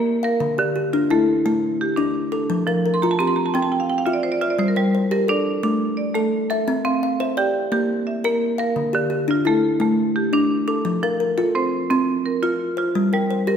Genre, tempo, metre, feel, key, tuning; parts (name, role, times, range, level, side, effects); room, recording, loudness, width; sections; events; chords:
southern african traditional; 115 BPM (dotted quarters); 12/8; straight; A4 = 440 Hz
kalimba; arpeggios; 0.0-13.6 s; D3 to F5; -20 LUFS; left 2 dB
marimba with hard mallets; arpeggios; 0.0-13.6 s; D3 to C6; -22 LUFS; right 4 dB
wet recital hall reverb, RT60 1.6 s; -18 LUFS; side -8 dB against mid
0.0-12.9 A section
marimba fill 2.8-4.6
0.4 Dm; 2.5 F; 4.6 Gm; 5.6 A5; 6.7 C; 7.7 Bb; 8.8 Dm; 10.9 F; 12.9 Gm